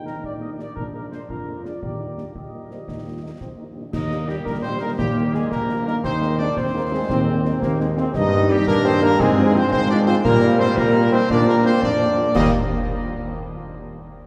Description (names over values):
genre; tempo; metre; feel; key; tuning
military-style march for wind band; 114 BPM (dotted quarters); 6/8; straight; Eb major; A4 = 440 Hz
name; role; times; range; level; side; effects
mellow trumpet section; melody; 0.0-12.5 s; G4 to Eb5; -28 LUFS; equal; none
warm euphonium; second line; 0.0-12.5 s; Eb3 to G4; -28 LUFS; equal; none
mellow tuba; bass; 0.0-12.5 s; Bb1 to Bb2; -25 LUFS; equal; none
dark French horn section; accompaniment; 0.1-12.5 s; F3 to F4; -32 LUFS; equal; none
concert snare drum, concert bass drum and clash cymbals; drums; 0.1-12.5 s; none; -32 LUFS; equal; none
warm trombone section; sustained chords; 3.9-12.5 s; G3 to Eb4; -27 LUFS; equal; none
room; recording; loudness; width
wet cathedral reverb, RT60 5.0 s; recorded in a church or concert hall; -19 LUFS; mono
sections
0.0-3.9 A section; 3.9-12.4 A section; 12.4-13.4 B section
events
none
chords
0.0 Eb/Bb; 0.8 Bb7; 1.8 Eb; 6.0 Ab/Eb; 8.1 Eb/G; 9.2 Fm/Ab; 10.3 Eb/Bb; 11.3 Bb7; 12.4 Eb